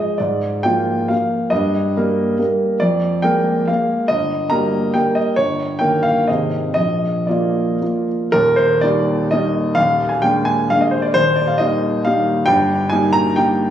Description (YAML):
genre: classical, romantic triple-time dance for piano with dotted rhythms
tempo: 110-151 BPM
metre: 3/4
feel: rubato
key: Eb major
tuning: A4 = 440 Hz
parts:
  - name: warm grand piano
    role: solo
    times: 0.0-13.7 s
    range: Eb1 to Bb5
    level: -15 LUFS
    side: equal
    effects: none
room: moderate concert hall reverb, RT60 2.4 s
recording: recorded on a phone in the room, club reverb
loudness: -15 LUFS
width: side -10 dB against mid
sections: 0.0-8.3 A section; 8.3-13.7 B section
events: none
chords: 0.2 Bb7/Ab; 1.5 Eb/G; 2.8 Bb7/F; 4.1 Eb/G; 5.4 Eb7/G; 6.3 Ab; 6.8 Bb; 8.3 Eb; 9.8 Bb7/Eb; 11.1 Eb; 12.5 Eb/G